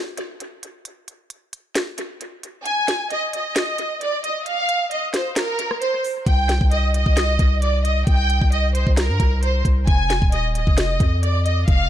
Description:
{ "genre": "hip hop, trap", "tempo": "133 BPM", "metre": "4/4", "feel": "half-time", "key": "C minor", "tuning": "A4 = 440 Hz", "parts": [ { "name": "trap drum kit", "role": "drums", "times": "0.2-11.8 s", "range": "hi-hat, kick drum, rim click, snare drum", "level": "-21 LUFS", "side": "equal", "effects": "dub echo" }, { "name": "rich studio violin section", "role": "melody", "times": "2.6-11.9 s", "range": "Bb4 to Ab5", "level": "-22 LUFS", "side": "equal", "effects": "low-pass filter, dub echo" }, { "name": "long sustained 808-style bass", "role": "bass", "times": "6.3-11.9 s", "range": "Eb1 to G2", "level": "-20 LUFS", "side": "equal", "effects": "none" } ], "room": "little or no reverb", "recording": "echo-heavy mix", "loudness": "-17 LUFS", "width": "side -11 dB against mid", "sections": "0.0-11.9 A section", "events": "break 0.0-6.3", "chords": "0.0 N.C.; 6.3 Cm; 9.9 Fm7", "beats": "0.40 | 0.85 1.30 1.75 2.21 | 2.66 3.11 3.56 4.01 | 4.46 4.91 5.36 5.81 | 6.26 6.72 7.17 7.62 | 8.07 8.52 8.97 9.42 | 9.87 10.32 10.78 11.23 | 11.68" }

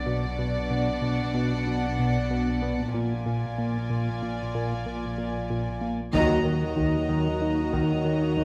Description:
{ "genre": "cinematic, suspense film score", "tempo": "94 BPM", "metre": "5/4", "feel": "straight", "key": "unclear", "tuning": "A4 = 440 Hz", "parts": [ { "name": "warm symphonic violin section", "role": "melody", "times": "0.0-8.4 s", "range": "F#5 to Bb5", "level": "-39 LUFS", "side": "equal", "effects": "none" }, { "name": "warm symphonic violin section", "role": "second line", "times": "0.0-8.4 s", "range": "D4 to Eb5", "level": "-35 LUFS", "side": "equal", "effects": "none" }, { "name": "dark symphonic double bass section", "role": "bass", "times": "0.0-8.4 s", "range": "Bb1 to Eb2", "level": "-35 LUFS", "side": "equal", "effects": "none" }, { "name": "warm studio cello section", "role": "bass", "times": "0.0-8.4 s", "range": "Bb2 to Eb3", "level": "-36 LUFS", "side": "equal", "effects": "none" }, { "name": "fat analog bass", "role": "riff", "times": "0.1-8.4 s", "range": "Bb2 to Eb4", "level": "-31 LUFS", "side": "equal", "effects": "none" }, { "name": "dark studio viola section", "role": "accompaniment", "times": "6.1-8.4 s", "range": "Gb4", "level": "-34 LUFS", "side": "equal", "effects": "none" }, { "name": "clear trombone section", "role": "sustained chords", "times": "6.1-8.4 s", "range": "Eb3 to Gb3", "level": "-34 LUFS", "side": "equal", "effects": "none" }, { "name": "mellow French horn section", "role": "sustained chords", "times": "6.1-8.4 s", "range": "Bb3 to Eb4", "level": "-35 LUFS", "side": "equal", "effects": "none" }, { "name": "taiko ensemble", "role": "drums", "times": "6.1-8.4 s", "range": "none", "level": "-37 LUFS", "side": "equal", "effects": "none" }, { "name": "timpani", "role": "percussion", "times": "6.1-7.1 s", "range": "Eb3", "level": "-38 LUFS", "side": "equal", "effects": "none" } ], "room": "wet concert hall reverb, RT60 2.4 s", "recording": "vinyl crackle", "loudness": "-27 LUFS", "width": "mono", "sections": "0.0-6.1 A section; 6.1-8.4 B section", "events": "band accent 6.1-6.8", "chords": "0.0 Bm; 3.0 Bb7; 6.1 Ebm", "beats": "0.40 1.03 1.67 2.31 | 2.95 3.59 4.23 4.87 5.50 | 6.14 6.78 7.42 8.06" }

